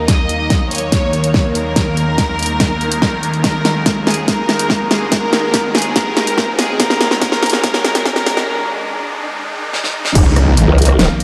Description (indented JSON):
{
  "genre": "heavy wobble dubstep",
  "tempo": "143 BPM",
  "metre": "4/4",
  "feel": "half-time",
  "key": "unclear",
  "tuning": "A4 = 440 Hz",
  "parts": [
    { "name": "supersaw pad", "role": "sustained chords", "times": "0.0-11.2 s", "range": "Eb2 to Bb4", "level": "-23 LUFS", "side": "equal", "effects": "phaser, sidechain pumping" },
    { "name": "riser and impact", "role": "sound effects", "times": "0.4-11.2 s", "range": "none", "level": "-27 LUFS", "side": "equal", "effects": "none" },
    { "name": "clear studio violin section", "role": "melody", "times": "0.1-8.5 s", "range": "Ab4 to Eb5", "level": "-22 LUFS", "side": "equal", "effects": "low-pass filter, analog delay" },
    { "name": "big-room dance drum kit", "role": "drums", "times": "0.1-11.2 s", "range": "crash cymbal, hi-hat, rim click, snare drum", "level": "-19 LUFS", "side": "equal", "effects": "none" },
    { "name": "electronic kick drum", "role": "drums", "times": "0.1-10.2 s", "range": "none", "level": "-20 LUFS", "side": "equal", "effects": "none" },
    { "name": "growl bass", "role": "bass", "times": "10.2-11.1 s", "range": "Eb1 to Db2", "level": "-14 LUFS", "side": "equal", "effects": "chorus, overdrive" },
    { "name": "snarling distorted saw bass", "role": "bass", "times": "10.3-10.7 s", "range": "Db2", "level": "-14 LUFS", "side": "equal", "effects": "distortion, overdrive" }
  ],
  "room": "wet church reverb, RT60 3.7 s",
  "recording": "dreamy mix soaked in reverb, high-pass filter",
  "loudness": "-15 LUFS",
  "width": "mono",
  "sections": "0.0-10.2 A section; 10.2-11.2 B section",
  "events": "build-up 0.0-10.2; drum fill 0.0-8.5, 9.7-10.2; break 8.5-10.2; drop 10.2-11.2; impact 10.2-11.2",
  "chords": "0.0 Eb5"
}